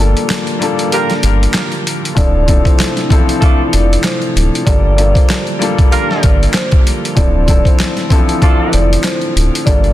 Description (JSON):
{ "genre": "hip hop, boom-bap hip-hop", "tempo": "96 BPM", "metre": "4/4", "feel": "swing 58% on 16ths", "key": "D minor", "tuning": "A4 = 439 Hz", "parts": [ { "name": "dark grand piano", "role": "accompaniment", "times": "0.0-9.9 s", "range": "E3 to A4", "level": "-18 LUFS", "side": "left 3 dB", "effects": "high-pass filter, low-pass filter" }, { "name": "mellow tonewheel organ", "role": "sustained chords", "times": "0.0-9.9 s", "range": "C3 to D4", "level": "-24 LUFS", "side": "right 4 dB", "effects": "slow rotary speaker, high-pass filter, low-pass filter" }, { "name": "sub bass with octave", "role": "bass", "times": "0.0-9.9 s", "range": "D1 to G1", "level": "-13 LUFS", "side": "equal", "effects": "none" }, { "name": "boom bap sampler-style drum kit", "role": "drums", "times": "0.2-9.9 s", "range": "handclaps, hi-hat, kick drum, snare drum", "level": "-13 LUFS", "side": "equal", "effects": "none" }, { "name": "mellow horn section", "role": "stabs", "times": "0.9-8.8 s", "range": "A3 to Bb4", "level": "-21 LUFS", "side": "right 1 dB", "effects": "high-pass filter, low-pass filter, ping-pong delay" }, { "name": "vibraphone with soft mallets", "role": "melody", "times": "2.2-9.9 s", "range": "C5 to D5", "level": "-21 LUFS", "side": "right 1 dB", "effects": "high-pass filter, low-pass filter, ping-pong delay" } ], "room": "little or no reverb", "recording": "dense, heavily limited modern master", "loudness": "-10 LUFS", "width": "side -14 dB against mid", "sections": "0.0-9.9 A section", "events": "break 0.0-2.2", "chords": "0.0 Gm7; 2.2 Dm7; 4.7 Gm7; 7.2 Dm7" }